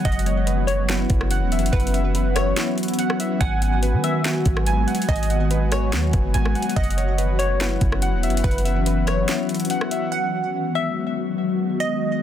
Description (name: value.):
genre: hip hop, atmospheric cloud-rap.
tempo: 143 BPM.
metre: 4/4.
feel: half-time.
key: G# minor.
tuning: A4 = 441 Hz.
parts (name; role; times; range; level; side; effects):
ethereal airy pad; sustained chords; 0.0-12.2 s; D#3 to F#4; -25 LUFS; left 2 dB; ensemble chorus, built-in reverb, sidechain pumping.
warbly lo-fi synth keys; arpeggios; 0.0-10.1 s; E4 to G#5; -28 LUFS; right 1 dB; chorus, tape echo.
glassy wavetable pluck; melody; 0.1-12.2 s; B4 to F#5; -28 LUFS; equal; chorus, tape echo.
warm 808-style bass; bass; 0.1-9.2 s; E1 to D#3; -22 LUFS; equal; none.
trap drum kit; drums; 0.1-10.0 s; hi-hat, kick drum, rim click, snare drum; -24 LUFS; equal; none.
room: digital ambience.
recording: dense, heavily limited modern master.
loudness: -19 LUFS.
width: side -10 dB against mid.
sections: 0.0-10.1 A section; 10.1-12.2 B section.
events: kick muted 2.6-3.4; break 9.3-10.1.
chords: 0.1 F#7sus4; 3.4 G#m7; 6.8 F#7sus4; 10.1 G#m7.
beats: | 0.05 0.47 0.89 1.31 | 1.73 2.15 2.57 2.99 | 3.41 3.83 4.25 4.67 | 5.08 5.50 5.92 6.34 | 6.76 7.18 7.60 8.02 | 8.44 8.86 9.28 9.70 | 10.12 10.54 10.96 11.38 | 11.80 12.22.